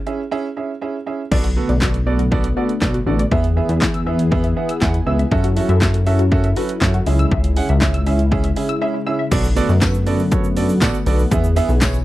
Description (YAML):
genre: dance-pop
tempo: 120 BPM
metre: 4/4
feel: straight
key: B dorian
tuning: A4 = 440 Hz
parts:
  - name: warm concert grand piano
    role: accompaniment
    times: 0.1-12.0 s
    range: B3 to G#5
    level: -23 LUFS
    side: right 6 dB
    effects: sidechain pumping
  - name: punchy analog drum machine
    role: drums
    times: 0.1-12.0 s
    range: crash cymbal, handclaps, hi-hat, kick drum, shaker, snare drum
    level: -20 LUFS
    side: equal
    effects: overdrive
  - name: warm analog pad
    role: sustained chords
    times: 1.3-12.0 s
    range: C#3 to A4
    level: -25 LUFS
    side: left 3 dB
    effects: chorus, sidechain pumping
  - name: tight sequenced synth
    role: arpeggios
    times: 1.3-9.3 s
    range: D4 to E6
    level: -28 LUFS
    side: left 6 dB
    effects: chorus, sidechain pumping, slapback echo
  - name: chorused synth bass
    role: bass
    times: 1.3-12.0 s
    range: A1 to F#2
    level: -17 LUFS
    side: left 1 dB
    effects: sidechain pumping
  - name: tambourine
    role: percussion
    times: 9.8-11.9 s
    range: none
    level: -34 LUFS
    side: left 18 dB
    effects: none
room: little or no reverb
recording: dry, close 1970s-style studio recording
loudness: -15 LUFS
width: side -16 dB against mid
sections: 0.0-1.3 A section; 1.3-9.3 B section; 9.3-12.0 C section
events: grand piano fill 4.3-5.3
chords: 0.0 C#m; 1.3 Bm7; 3.3 E; 5.3 F#m7; 7.1 C#m; 9.3 Bm7; 11.3 E